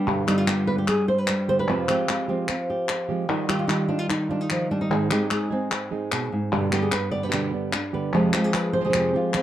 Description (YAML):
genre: flamenco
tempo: 149 BPM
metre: 4/4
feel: straight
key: G phrygian dominant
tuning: A4 = 441 Hz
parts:
  - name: flamenco guitar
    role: melody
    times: 0.0-9.4 s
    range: G2 to D5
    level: -23 LUFS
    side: equal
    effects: none
  - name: flamenco guitar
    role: stabs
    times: 0.1-9.4 s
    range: F2 to Ab4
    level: -28 LUFS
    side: right 4 dB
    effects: none
  - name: palmas hand claps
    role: percussion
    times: 0.1-9.4 s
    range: none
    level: -28 LUFS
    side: left 3 dB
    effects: none
room: moderate studio reverb, RT60 0.5 s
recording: dark, warm production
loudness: -21 LUFS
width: side -12 dB against mid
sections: 0.1-9.4 A section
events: none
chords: 0.1 G; 1.7 Fmadd9; 3.3 Ebadd9; 4.9 Ab; 6.5 G; 8.1 Fmadd9